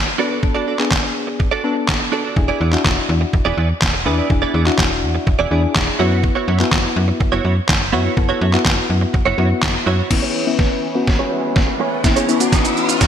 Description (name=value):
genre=dance-pop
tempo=124 BPM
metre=4/4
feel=straight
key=unclear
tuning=A4 = 436 Hz
part: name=direct-recorded clean electric guitar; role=riff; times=0.1-13.0 s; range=B3 to D5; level=-23 LUFS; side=right 7 dB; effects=ensemble chorus, low-pass filter
part: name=soft electric-piano-like synth keys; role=accompaniment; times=0.2-13.1 s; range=B3 to B4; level=-21 LUFS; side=left 4 dB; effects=chorus, sidechain pumping, low-pass filter
part: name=detuned 8-bit digital drum machine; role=drums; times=0.4-13.1 s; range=crash cymbal, handclaps, hi-hat, kick drum, shaker, snare drum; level=-18 LUFS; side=equal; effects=gated reverb
part: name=slap-like FM bass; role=bass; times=2.4-10.0 s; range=E1 to F#2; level=-19 LUFS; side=equal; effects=sidechain pumping
part: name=pedal harmonium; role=sustained chords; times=10.1-13.1 s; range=E3 to B4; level=-25 LUFS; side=equal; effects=sidechain pumping, low-pass filter
part: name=riser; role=sound effects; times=11.0-13.1 s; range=none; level=-23 LUFS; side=equal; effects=none
room=moderate lush hall reverb, RT60 1.9 s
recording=bright 1980s-style digital production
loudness=-15 LUFS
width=side -9 dB against mid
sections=0.0-10.1 A section; 10.1-13.1 B section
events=build-up 10.1-13.1; drum fill 10.1-13.1; filter sweep 10.1-13.1; riser 11.0-13.1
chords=0.0 Bm7; 2.4 E7; 6.0 F#7sus4; 10.1 C#m7